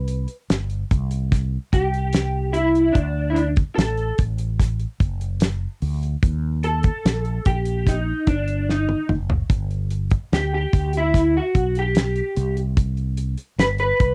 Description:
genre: indie pop, bedroom pop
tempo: 73 BPM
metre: 4/4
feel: straight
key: G major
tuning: A4 = 440 Hz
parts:
  - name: electric guitar through a small old amp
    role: accompaniment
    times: 0.0-14.1 s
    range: D4 to B4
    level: -24 LUFS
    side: equal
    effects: ensemble chorus, warbly pitch drift
  - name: mellow fretless electric bass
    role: bass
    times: 0.0-14.1 s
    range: F#1 to Eb2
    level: -26 LUFS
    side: equal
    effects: none
  - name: damped 70s drum kit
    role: drums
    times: 0.1-14.1 s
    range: hi-hat, kick drum, snare drum, toms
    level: -22 LUFS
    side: equal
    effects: cassette tape
room: light reverb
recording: home recording on cassette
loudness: -22 LUFS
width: mono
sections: 0.0-14.1 A section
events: clean electric guitar solo 0.0-14.1; drum fill 8.7-9.5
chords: 0.0 C5; 3.0 D; 6.2 Eb; 9.5 G; 12.4 C5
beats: 0.50 1.32 2.14 | 2.96 3.77 4.59 5.41 | 6.23 7.05 7.87 8.68 | 9.50 10.32 11.14 11.95 | 12.77 13.59

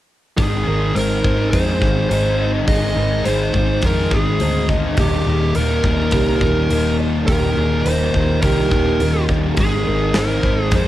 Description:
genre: rock, shoegaze and dream pop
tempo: 104 BPM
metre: 4/4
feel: straight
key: unclear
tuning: A4 = 440 Hz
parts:
  - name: fuzz lead guitar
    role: melody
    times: 0.4-10.9 s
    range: G4 to Eb5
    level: -22 LUFS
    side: right 1 dB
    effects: distortion, cassette tape
  - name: mellow electric guitar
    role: arpeggios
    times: 0.4-10.9 s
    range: G4 to Eb5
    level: -26 LUFS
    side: right 3 dB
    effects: wide subtle chorus, cassette tape, tape echo
  - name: raw garage guitar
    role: riff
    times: 0.4-10.9 s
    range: Eb2 to Eb4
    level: -26 LUFS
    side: right 9 dB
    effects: overdrive, reverse reverb, cassette tape
  - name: thick fuzz guitar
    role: riff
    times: 0.4-10.9 s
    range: Eb2 to Ab3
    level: -21 LUFS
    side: left 4 dB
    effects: distortion, analog chorus, cassette tape
  - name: vintage muted fingered electric bass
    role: bass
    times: 0.4-10.9 s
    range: Eb1 to F2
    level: -21 LUFS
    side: equal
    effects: none
  - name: big rock drum kit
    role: drums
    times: 0.4-10.9 s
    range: hi-hat, kick drum, snare drum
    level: -22 LUFS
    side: equal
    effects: cassette tape
room: small room reverb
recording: home recording on cassette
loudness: -15 LUFS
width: side -14 dB against mid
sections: 0.4-10.9 A section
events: none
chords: 0.4 Ab; 5.0 Ebmaj7; 9.6 Ab6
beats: | 0.38 0.96 1.53 2.11 | 2.68 3.26 3.83 4.41 | 4.98 5.56 6.13 6.71 | 7.29 7.86 8.43 9.01 | 9.58 10.15 10.73

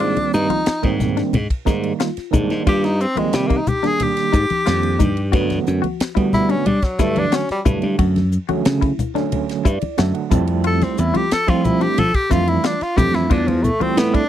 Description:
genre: electric jazz fusion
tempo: 90 BPM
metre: 4/4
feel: straight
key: unclear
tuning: A4 = 440 Hz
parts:
  - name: bright tenor saxophone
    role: melody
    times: 0.0-14.3 s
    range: F3 to A4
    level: -20 LUFS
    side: left 1 dB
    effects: slapback echo
  - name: overdriven tine electric piano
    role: accompaniment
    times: 0.0-14.2 s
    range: D3 to A5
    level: -23 LUFS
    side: right 10 dB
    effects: medium tremolo
  - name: clean electric guitar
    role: stabs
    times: 0.0-14.3 s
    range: D4 to F#4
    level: -27 LUFS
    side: left 20 dB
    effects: analog chorus
  - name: slap bass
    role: bass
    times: 0.0-14.2 s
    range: E2 to G3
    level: -19 LUFS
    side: equal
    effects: none
  - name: tight funk drum kit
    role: drums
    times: 0.0-14.3 s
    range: hi-hat, kick drum, ride cymbal, snare drum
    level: -20 LUFS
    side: equal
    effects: none
  - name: congas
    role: percussion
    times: 0.2-14.0 s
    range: none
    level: -25 LUFS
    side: left 3 dB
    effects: none
room: little or no reverb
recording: dry, close 1970s-style studio recording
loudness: -16 LUFS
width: side -11 dB against mid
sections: 0.0-14.3 A section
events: tenor saxophone solo 0.0-14.3; tine electric piano fill 9.3-10.7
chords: 0.0 Abmaj9; 5.3 Gmaj9; 10.3 Fmaj9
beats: | 0.01 0.67 1.34 2.00 | 2.67 3.33 4.00 4.66 | 5.33 6.00 6.66 7.33 | 7.99 8.66 9.32 9.99 | 10.65 11.32 11.98 12.65 | 13.31 13.98

